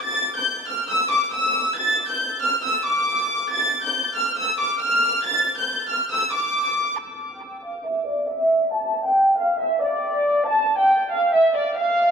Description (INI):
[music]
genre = hip hop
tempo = 138 BPM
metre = 4/4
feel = half-time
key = unclear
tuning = A4 = 436 Hz
[part]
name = warm studio violin section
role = solo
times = 0.0-12.1 s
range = D5 to A6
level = -19 LUFS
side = equal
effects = low-pass filter, tape echo
[sound]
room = moderate echo chamber reverb, RT60 1.7 s, studio reverb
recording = echo-heavy mix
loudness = -19 LUFS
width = side -6 dB against mid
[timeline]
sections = 0.0-7.0 A section; 7.0-12.1 B section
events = none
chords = none